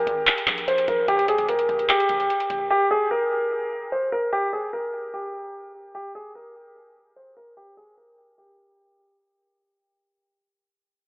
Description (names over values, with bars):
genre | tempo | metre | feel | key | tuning
hip hop, trap | 148 BPM | 4/4 | half-time | F minor | A4 = 444 Hz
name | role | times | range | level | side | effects
dark grand piano | melody | 0.0-9.2 s | G4 to C5 | -22 LUFS | equal | low-pass filter, tape echo
long sustained 808-style bass | bass | 0.0-2.7 s | Eb1 to Bb1 | -43 LUFS | equal | none
booming analog drum machine | drums | 0.1-2.7 s | handclaps, hi-hat, kick drum | -24 LUFS | equal | overdrive
room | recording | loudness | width
wet huge ambient reverb, RT60 4.3 s | dreamy mix soaked in reverb, telephone sound | -20 LUFS | side -36 dB against mid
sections
0.0-9.2 A section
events
fade-out 0.0-9.2; filter sweep on grand piano 0.0-9.2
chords
0.0 Absus2; 1.1 Fsus2; 2.7 N.C.